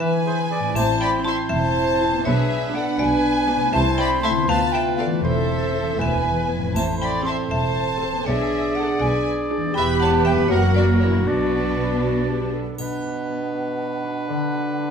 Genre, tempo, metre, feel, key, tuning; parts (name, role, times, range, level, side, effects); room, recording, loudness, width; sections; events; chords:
cinematic, playful, whimsical film cue; 80 BPM (dotted quarters); 6/8; straight; A minor, B minor from 9.7 s; A4 = 442 Hz
dark chamber violin section; melody; 0.0-12.5 s; D4 to E5; -30 LUFS; right 1 dB
xylophone with plastic mallets; melody; 0.0-12.5 s; F#4 to A5; -31 LUFS; left 1 dB
clear oboe; second line; 0.0-14.9 s; A#4 to D5; -30 LUFS; right 1 dB
mellow hollow concert flute; second line; 0.0-14.9 s; B4 to C6; -26 LUFS; equal
warm studio violin section; second line; 0.0-12.5 s; B4 to C6; -30 LUFS; equal
warm bassoon; accompaniment; 0.0-0.5, 12.8-14.9 s; B2 to E3; -29 LUFS; right 1 dB
dark French horn section; sustained chords; 0.0-12.5 s; E3 to B4; -26 LUFS; equal
concert harp; arpeggios; 0.0-14.9 s; E2 to D5; -29 LUFS; left 4 dB
clear clarinet; second line; 0.3-14.9 s; D4 to A4; -30 LUFS; equal
warm chamber cello section; bass; 0.7-12.6 s; D2 to C3; -26 LUFS; equal
warm chamber double bass section; bass; 0.8-12.6 s; E1 to D2; -27 LUFS; right 2 dB
triangle; percussion; 0.8-1.7, 6.8-7.7, 12.8-13.7 s; -41 LUFS; right 2 dB
warm studio viola section; accompaniment; 1.3-12.6 s; A3 to B4; -28 LUFS; equal
wet stone room reverb, RT60 1.3 s; -18 LUFS; side -7 dB against mid
0.8-12.8 A section; 12.8-14.9 B section
0.0 E; 0.8 Am; 2.3 G#dim/B; 3.7 Am/C; 4.5 Bdim/D; 5.2 Am/E; 6.0 E; 6.8 Am; 8.3 G#dim/B; 9.7 Em; 10.5 F#; 11.3 Bm; 14.3 Bm/D